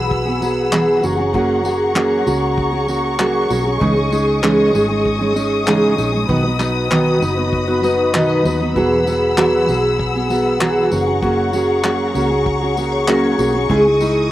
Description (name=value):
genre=acoustic pop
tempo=97 BPM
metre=4/4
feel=straight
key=unclear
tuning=A4 = 441 Hz
part: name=fingerpicked steel-string acoustic guitar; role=accompaniment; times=0.0-14.3 s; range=B2 to B4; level=-16 LUFS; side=right 1 dB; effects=slapback echo
part: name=dark studio string section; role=sustained chords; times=0.0-14.3 s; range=F#4 to E6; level=-22 LUFS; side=left 3 dB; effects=none
part: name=vintage muted fingered electric bass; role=bass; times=0.0-14.3 s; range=E1 to D#2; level=-24 LUFS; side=left 1 dB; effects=none
part: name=cloth-damped thuddy drum kit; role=drums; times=0.1-14.2 s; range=handclaps, kick drum, tambourine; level=-24 LUFS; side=left 1 dB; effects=none
part: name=vibraphone with medium hard mallets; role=second line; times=7.7-8.7, 12.9-13.7 s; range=C#4 to D#5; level=-20 LUFS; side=left 4 dB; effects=none
room=little or no reverb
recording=recorded outdoors, with no room sound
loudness=-14 LUFS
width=side -14 dB against mid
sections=0.0-14.3 A section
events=none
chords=0.0 Eadd9; 1.0 F#add9; 3.8 C#madd9; 6.3 B; 8.8 Eadd9; 10.9 F#add9; 13.7 C#madd9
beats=0.11 0.73 | 1.35 1.96 2.58 3.20 | 3.82 4.44 5.05 5.67 | 6.29 6.91 7.52 8.14 | 8.76 9.38 9.99 10.61 | 11.23 11.85 12.46 13.08 | 13.70 14.32